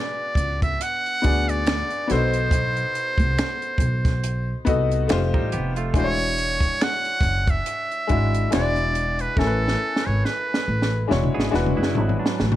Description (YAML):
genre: R&B, neo-soul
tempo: 70 BPM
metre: 4/4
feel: swing 56% on 16ths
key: B dorian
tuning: A4 = 440 Hz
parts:
  - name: trumpet with metal mute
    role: melody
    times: 0.0-11.1 s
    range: A4 to F#5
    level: -25 LUFS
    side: right 1 dB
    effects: none
  - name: clear grand piano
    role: accompaniment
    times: 0.0-12.6 s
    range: G#3 to G#5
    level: -27 LUFS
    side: left 4 dB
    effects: none
  - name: upright bass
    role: bass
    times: 0.4-12.6 s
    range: E1 to D2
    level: -24 LUFS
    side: equal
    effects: none
  - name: compact cocktail drum kit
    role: drums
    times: 0.4-12.6 s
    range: finger snaps, hi-hat, kick drum, snare drum, toms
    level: -24 LUFS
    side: equal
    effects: none
  - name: semi-hollow electric guitar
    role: second line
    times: 5.3-6.2, 11.3-12.6 s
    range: F#3 to G#4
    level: -30 LUFS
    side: right 6 dB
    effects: none
room: little or no reverb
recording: none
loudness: -20 LUFS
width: side -13 dB against mid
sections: 0.0-12.6 A section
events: drum fill 9.4-12.6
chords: 0.0 Bm69; 2.1 B7b9; 5.1 F9; 5.9 E13; 8.5 E9; 9.4 Amaj9; 11.1 E13